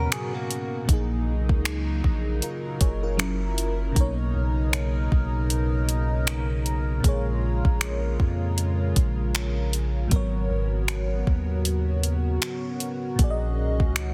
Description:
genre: contemporary R&B.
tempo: 78 BPM.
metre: 4/4.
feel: swing 58% on 16ths.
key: G# dorian.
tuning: A4 = 440 Hz.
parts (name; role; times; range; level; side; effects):
FM electric piano with soft pad layer; accompaniment; 0.0-14.1 s; G#2 to D#5; -34 LUFS; equal; chorus, tremolo.
chorused pulse-width pad; sustained chords; 0.0-14.1 s; B2 to A#4; -34 LUFS; equal; none.
direct-recorded clean electric guitar; arpeggios; 0.0-0.9 s; A#3 to A#4; -36 LUFS; equal; lush chorus, digital delay.
long sustained 808-style bass; bass; 0.0-14.1 s; F#1 to E#2; -28 LUFS; equal; none.
smooth R&B drum kit; drums; 0.1-14.1 s; finger snaps, hi-hat, kick drum; -26 LUFS; equal; soft clipping on snare.
room: little or no reverb.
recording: dense, heavily limited modern master.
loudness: -25 LUFS.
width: mono.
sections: 0.0-14.1 A section.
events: none.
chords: 0.0 G#m11; 0.9 F#6/A#; 3.2 F#7; 4.0 Bmaj9; 7.0 A#m7; 10.1 G#m11; 13.2 F#6/A#.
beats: 0.12 | 0.89 1.66 2.43 3.20 | 3.96 4.74 5.50 6.27 | 7.04 7.81 8.58 9.35 | 10.12 10.89 11.66 12.43 | 13.20 13.96.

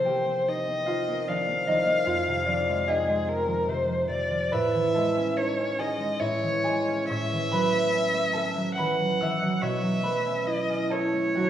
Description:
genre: classical, impressionist duo for violin and harp.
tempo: 72 BPM.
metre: 3/4.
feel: uneven beats, rubato.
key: unclear.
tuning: A4 = 439 Hz.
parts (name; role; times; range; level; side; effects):
warm violin; melody; 0.0-11.5 s; Ab4 to F#5; -27 LUFS; left 1 dB; none.
concert harp; accompaniment; 0.0-11.5 s; F2 to E6; -26 LUFS; right 1 dB; none.
room: wet recital hall reverb, RT60 1.5 s.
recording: heard from further back in the room.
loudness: -23 LUFS.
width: side -10 dB against mid.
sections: 0.0-11.5 A section.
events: none.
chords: 0.0 Cm11; 2.1 Fm7; 4.5 Amaj7#11; 6.2 C#m/A; 7.1 A69; 9.6 B9sus4.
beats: 0.48 1.29 | 2.08 2.89 3.69 | 4.55 5.38 6.21 | 7.10 7.92 8.77 | 9.63 10.47 11.37.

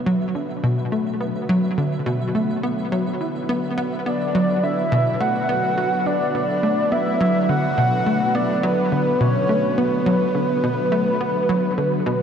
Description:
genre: ambient, sequencer-driven space music.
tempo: 105 BPM.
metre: 4/4.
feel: straight.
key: B minor.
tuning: A4 = 441 Hz.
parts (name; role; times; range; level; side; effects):
sweeping resonant pad; sustained chords; 0.0-12.2 s; D3 to B4; -26 LUFS; left 1 dB; chorus, shimmer reverb.
plucky analog bass; riff; 0.0-12.2 s; B2 to B3; -21 LUFS; equal; wide subtle chorus, shimmer reverb, tape echo.
pulsing gated texture; texture; 0.0-12.2 s; E5; -38 LUFS; right 5 dB; chorus, built-in reverb, shimmer reverb.
breathy flute-like synth lead; melody; 4.1-12.2 s; B4 to F#5; -21 LUFS; right 1 dB; analog chorus, shimmer reverb, tape echo.
room: wet cathedral reverb, RT60 5.3 s.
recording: in a vast, echoing space.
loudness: -18 LUFS.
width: side -8 dB against mid.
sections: 0.0-12.2 A section.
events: fade-in on analog synth pad 0.0-12.2; fade-in on synth texture 0.0-12.2.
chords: 0.0 Bm.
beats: 0.06 0.64 1.21 | 1.78 2.35 2.92 3.49 | 4.06 4.63 5.21 5.78 | 6.35 6.92 7.49 8.06 | 8.63 9.21 9.78 10.35 | 10.92 11.49 12.06.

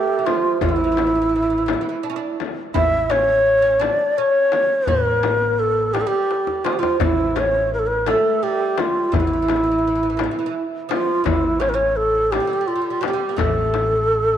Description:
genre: Persian modal ensemble.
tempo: 56 BPM (dotted quarters).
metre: 6/8.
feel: straight.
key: A dastgah homayun.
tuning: A4 = 437 Hz.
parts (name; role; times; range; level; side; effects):
breathy mellow low ney; melody; 0.0-14.4 s; E4 to E5; -18 LUFS; equal; none.
oud; second line; 0.0-14.4 s; E3 to E4; -28 LUFS; right 9 dB; none.
frame drum; percussion; 0.3-13.9 s; none; -28 LUFS; left 10 dB; none.
tombak; percussion; 0.3-14.0 s; none; -26 LUFS; left 4 dB; none.
upright bass; bass; 0.6-14.4 s; A1; -27 LUFS; equal; none.
room: moderate plate reverb, RT60 3.4 s.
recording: 1960s-style stereo with parts hard left and right.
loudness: -17 LUFS.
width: side -10 dB against mid.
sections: 0.0-14.4 A section.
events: drum fill 6.3-7.0.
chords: none.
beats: | 0.61 1.68 | 2.75 3.81 | 4.88 5.94 | 7.00 8.07 | 9.13 10.20 | 11.26 12.32 | 13.38.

